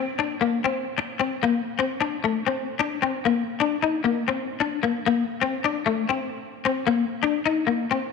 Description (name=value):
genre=highlife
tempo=132 BPM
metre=4/4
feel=swing 54% on 16ths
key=Bb major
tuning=A4 = 443 Hz
part: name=clean electric guitar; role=solo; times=0.0-8.1 s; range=A3 to Eb4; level=-22 LUFS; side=left 6 dB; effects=ensemble chorus
room=wet echo chamber reverb, RT60 2.0 s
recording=none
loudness=-22 LUFS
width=side -4 dB against mid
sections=0.0-1.4 A section; 1.4-8.1 B section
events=none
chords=none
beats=0.07 0.53 0.98 | 1.43 1.89 2.34 2.80 | 3.25 3.70 4.16 4.61 | 5.06 5.52 5.97 6.42 | 6.88 7.33 7.78